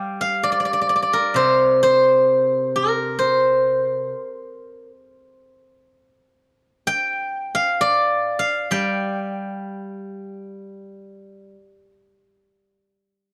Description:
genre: chinese traditional, Chinese solo plucked strings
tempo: 65 BPM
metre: 4/4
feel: rubato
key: G yu mode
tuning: A4 = 440 Hz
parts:
  - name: steel-string zither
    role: solo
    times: 0.0-13.3 s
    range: C3 to G5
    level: -20 LUFS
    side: equal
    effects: none
room: light reverb, small room ambience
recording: dry, close 1970s-style studio recording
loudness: -20 LUFS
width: mono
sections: 0.0-13.3 A section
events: none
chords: none

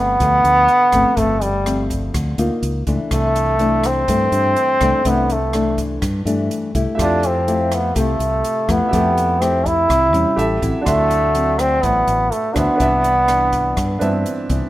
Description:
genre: bossa nova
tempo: 124 BPM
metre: 4/4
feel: straight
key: C major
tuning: A4 = 440 Hz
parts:
  - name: bright trombone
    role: melody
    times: 0.0-14.3 s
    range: G3 to E4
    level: -16 LUFS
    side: equal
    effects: none
  - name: nylon-string guitar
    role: accompaniment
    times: 0.0-14.7 s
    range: G2 to G4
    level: -23 LUFS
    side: left 2 dB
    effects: none
  - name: fingered electric bass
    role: bass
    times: 0.0-14.6 s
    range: G1 to G2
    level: -22 LUFS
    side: equal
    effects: none
  - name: swinging big-band drum kit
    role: drums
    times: 0.2-14.6 s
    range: hi-hat, kick drum, rim click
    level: -28 LUFS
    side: equal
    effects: none
  - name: clear baby grand piano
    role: accompaniment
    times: 7.0-14.7 s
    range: C4 to C6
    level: -24 LUFS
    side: right 2 dB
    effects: none
room: light reverb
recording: rough home demo mix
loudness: -14 LUFS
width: side -15 dB against mid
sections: 0.0-14.7 A section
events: none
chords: 0.0 G9sus4; 2.6 Db69; 3.1 C69; 7.0 Fmaj9; 10.4 A7; 10.9 D9; 12.8 Cmaj9

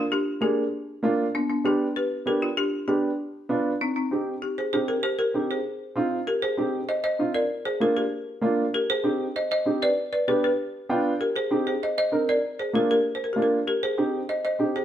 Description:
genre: latin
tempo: 195 BPM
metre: 4/4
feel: straight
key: C minor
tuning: A4 = 439 Hz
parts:
  - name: folk marimba with hard mallets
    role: melody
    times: 0.0-14.8 s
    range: B3 to Eb5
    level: -25 LUFS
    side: left 1 dB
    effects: none
  - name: dark upright piano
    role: accompaniment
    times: 0.0-14.8 s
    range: Bb3 to G5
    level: -25 LUFS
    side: right 2 dB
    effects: none
room: wet stone room reverb, RT60 1.0 s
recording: band playing live in one room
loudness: -23 LUFS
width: side -10 dB against mid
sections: 0.0-6.3 A section; 6.3-14.8 B section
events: upright piano fill 10.7-11.2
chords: 0.0 Bb; 1.3 G; 3.8 Cm; 7.5 Bb; 8.7 Cm; 10.0 G7; 11.2 Cm; 12.4 Bb; 13.7 Cm

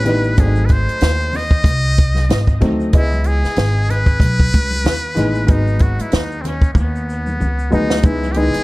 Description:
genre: hip hop, jazz-hop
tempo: 94 BPM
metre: 4/4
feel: swing 57% on 16ths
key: C# minor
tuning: A4 = 439 Hz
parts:
  - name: trumpet with metal mute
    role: melody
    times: 0.0-8.6 s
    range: A#3 to D#5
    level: -22 LUFS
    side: equal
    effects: dub echo
  - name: upright bass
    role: bass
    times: 0.0-8.6 s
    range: G#1 to D#2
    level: -18 LUFS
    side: equal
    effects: none
  - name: congas and tube shaker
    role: percussion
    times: 0.0-8.6 s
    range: none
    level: -30 LUFS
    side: left 1 dB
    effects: none
  - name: warm upright piano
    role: accompaniment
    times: 0.1-8.6 s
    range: D#3 to D#5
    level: -21 LUFS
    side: left 1 dB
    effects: none
  - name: compact cocktail drum kit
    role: drums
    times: 0.1-8.6 s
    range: hi-hat, kick drum, snare drum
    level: -15 LUFS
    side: equal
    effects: none
room: small room ambience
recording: echo-heavy mix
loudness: -13 LUFS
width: side -20 dB against mid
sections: 0.0-8.0 A section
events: drum fill 6.8-8.0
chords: 0.4 G#7b9; 2.9 C#m9; 5.5 G#m7; 8.0 C#m9

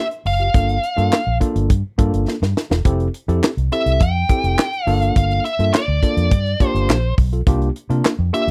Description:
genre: early-eighties boogie funk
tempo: 104 BPM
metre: 4/4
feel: straight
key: G dorian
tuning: A4 = 439 Hz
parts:
  - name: nasal lead guitar with a parked wah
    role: melody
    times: 0.0-8.5 s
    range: D5 to G5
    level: -23 LUFS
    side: equal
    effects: overdrive, slapback echo
  - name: tine electric piano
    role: accompaniment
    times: 0.0-8.5 s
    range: Bb3 to Bb4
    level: -26 LUFS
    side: equal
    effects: overdrive
  - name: tight funk drum kit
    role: drums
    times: 0.1-8.5 s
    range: handclaps, hi-hat, kick drum, snare drum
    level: -19 LUFS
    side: equal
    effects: none
  - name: vintage muted fingered electric bass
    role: bass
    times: 0.3-8.5 s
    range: E1 to C3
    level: -21 LUFS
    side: equal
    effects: none
room: little or no reverb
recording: dry, close 1970s-style studio recording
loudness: -18 LUFS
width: mono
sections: 0.0-8.5 A section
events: drum fill 2.3-2.9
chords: 0.0 Csus4 (rootless); 0.5 Gm7; 2.9 Fmaj7; 4.9 Gm7; 7.5 C7sus4

